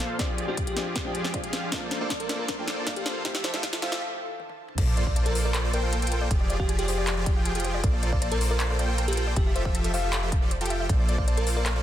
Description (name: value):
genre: future bass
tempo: 157 BPM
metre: 4/4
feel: half-time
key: Bb lydian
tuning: A4 = 439 Hz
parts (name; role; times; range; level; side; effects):
- ethereal airy pad; sustained chords; 0.0-4.8 s; F2 to A4; -41 LUFS; equal; ensemble chorus, built-in reverb, phaser, sidechain pumping
- supersaw chords; riff; 0.0-11.8 s; F3 to G5; -31 LUFS; equal; sidechain pumping, low-pass filter
- trap drum kit; drums; 0.0-11.7 s; crash cymbal, handclaps, hi-hat, snare drum, toms; -32 LUFS; left 1 dB; small room ambience
- dark grand piano; accompaniment; 0.2-3.9 s; A3 to G5; -37 LUFS; equal; sidechain pumping, dub echo
- electronic kick drum; drums; 0.2-11.3 s; none; -27 LUFS; equal; small room ambience
- bell-like FM electric piano; melody; 0.5-11.7 s; G4 to F5; -35 LUFS; left 1 dB; chorus, sidechain pumping, dub echo
- soft round pluck; arpeggios; 4.8-11.8 s; Ab4 to A5; -38 LUFS; right 2 dB; chorus, sidechain pumping, dub echo
- warm 808-style bass; bass; 4.8-11.8 s; F1 to Bb1; -27 LUFS; equal; sidechain pumping
- sub drop; sound effects; 4.8-6.3 s; none; barely audible; none; none
room: light reverb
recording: dense, heavily limited modern master, high-pass filter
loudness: -24 LUFS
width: side -12 dB against mid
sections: 0.0-4.8 A section; 4.8-11.8 B section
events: build-up 0.0-4.8; drum fill 0.0-4.0, 4.4-4.8; filter sweep 0.0-4.8; break 4.0-4.8; drop 4.8-11.8; impact 4.8-6.3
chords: 0.2 Fm6; 1.7 Bbmaj7; 3.3 Fmaj7; 4.8 Bbmaj7; 6.3 Fm6; 7.8 Bbmaj7; 9.4 Fmaj7; 10.9 Bbmaj7